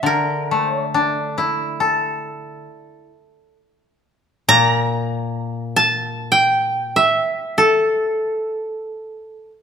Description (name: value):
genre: japanese traditional, Japanese chamber music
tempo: free time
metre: none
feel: none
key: A in sen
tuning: A4 = 439 Hz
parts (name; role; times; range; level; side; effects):
- koto; melody; 0.0-9.5 s; A4 to Bb5; -17 LUFS; right 1 dB; none
- koto; accompaniment; 0.0-7.2 s; Bb2 to A4; -21 LUFS; left 3 dB; none
room: moderate recital hall reverb, RT60 1.6 s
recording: none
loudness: -16 LUFS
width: side -7 dB against mid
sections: 0.0-9.6 A section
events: none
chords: none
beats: free time